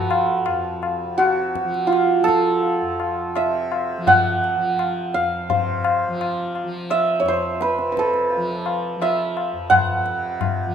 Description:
indian classical, Hindustani; 84 BPM; 4/4; straight; A4 = 440 Hz
santur; melody; 0.0-10.7 s; F4 to Gb5; -19 LUFS; right 2 dB
tanpura; drone; 0.0-10.7 s; F2 to F3; -30 LUFS; equal
tabla; percussion; 0.1-10.7 s; -25 LUFS; left 6 dB
moderate scoring stage reverb, RT60 1.6 s; minimal, uncompressed stereo recording; -18 LUFS; side -8 dB against mid
0.0-5.5 A section; 5.5-10.7 B section
speeding up 0.0-10.7

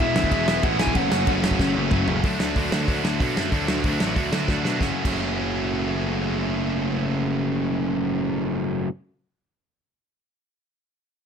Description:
punk rock; 187 BPM; 4/4; straight; F# minor; A4 = 440 Hz
lead guitar through a small cranked amp; melody; 0.0-1.3 s; E5 to G#5; -25 LUFS; equal; overdrive
distorted electric guitar; riff; 0.0-8.9 s; F#2 to F#4; -26 LUFS; right 13 dB; overdrive
fuzz guitar; riff; 0.0-2.2 s; E2 to F#3; -29 LUFS; left 1 dB; distortion
overdriven electric guitar; riff; 0.0-8.9 s; F#2 to G#4; -27 LUFS; left 12 dB
fuzz picked electric bass; bass; 0.0-8.8 s; E1 to B2; -28 LUFS; equal; overdrive
loose indie drum kit; drums; 0.0-5.1 s; crash cymbal, hi-hat, kick drum, snare drum, toms; -25 LUFS; equal
little or no reverb; -21 LUFS; side -7 dB against mid
0.0-2.2 A section; 2.2-4.8 B section; 4.8-7.4 C section
drum fill 1.6-2.2, 4.5-4.8
0.0 E; 1.0 F#m; 2.2 D; 4.8 F#m

